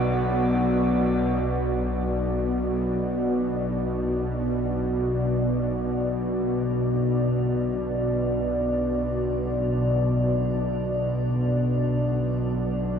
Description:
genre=dark ambient drone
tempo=free time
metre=none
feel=none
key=B minor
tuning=A4 = 440 Hz
part: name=deep dark ambient pad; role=sustained chords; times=0.0-13.0 s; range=B3 to D5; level=-26 LUFS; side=equal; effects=chorus, built-in reverb
part: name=bowed-like drone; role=drone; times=0.0-13.0 s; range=B1 to B2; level=-25 LUFS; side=equal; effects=built-in reverb
part: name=metallic inharmonic drone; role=texture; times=0.0-13.0 s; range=F#3 to F#4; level=-38 LUFS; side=right 1 dB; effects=chorus, built-in reverb
room=wet huge ambient reverb, RT60 7.1 s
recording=none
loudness=-22 LUFS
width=side -7 dB against mid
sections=0.0-1.5 A section; 1.5-13.0 B section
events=fade-in on synth drone 1.5-13.0; filter sweep on synth drone 1.5-13.0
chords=0.0 Bm

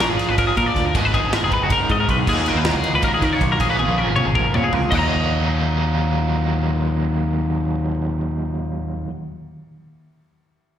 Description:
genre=math rock and midwest emo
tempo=316 BPM (eighths)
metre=7/8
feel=straight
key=Eb minor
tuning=A4 = 442 Hz
part: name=twelve-string electric guitar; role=arpeggios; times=0.0-9.1 s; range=Gb4 to Bb5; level=-21 LUFS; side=left 3 dB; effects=analog chorus, slapback echo
part: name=overdriven semi-hollow guitar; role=riff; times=0.0-9.1 s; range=Eb2 to F4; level=-22 LUFS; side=right 1 dB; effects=tremolo, slapback echo
part: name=growling picked electric bass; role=bass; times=0.0-9.0 s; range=Gb1 to Eb3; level=-22 LUFS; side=equal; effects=overdrive
part: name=modern studio drum kit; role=drums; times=0.0-5.0 s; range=crash cymbal, kick drum, ride cymbal, snare drum, toms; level=-24 LUFS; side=equal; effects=none
room=small room ambience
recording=live gig heard through the venue's PA, recital hall reverb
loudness=-17 LUFS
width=side -10 dB against mid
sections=0.0-4.9 A section; 4.9-7.6 B section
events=drum fill 3.8-4.9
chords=0.0 Bb7; 0.9 Abm7; 2.3 Ebm7; 3.6 Bbm7; 4.9 Ebm

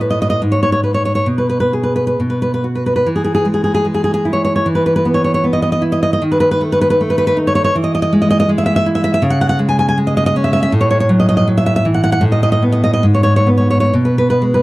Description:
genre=romantic piece for solo classical guitar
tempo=63-85 BPM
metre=2/4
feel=rubato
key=E major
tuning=A4 = 439 Hz
part: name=nylon-string guitar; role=solo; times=0.0-14.6 s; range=G#2 to G#5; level=-12 LUFS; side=equal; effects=none
room=small room ambience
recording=dry, close 1970s-style studio recording, lossy compression artefacts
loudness=-12 LUFS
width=side -18 dB against mid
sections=0.0-3.1 A section; 3.1-14.6 A section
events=none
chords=0.4 G#madd11; 1.3 G#m/B; 2.2 B5; 3.1 E; 4.7 C#m9/E; 6.2 B9/D#; 7.7 E; 9.2 C#5; 10.7 F#m7/A; 12.3 B7/A; 13.1 G#madd11; 14.0 G#m/B

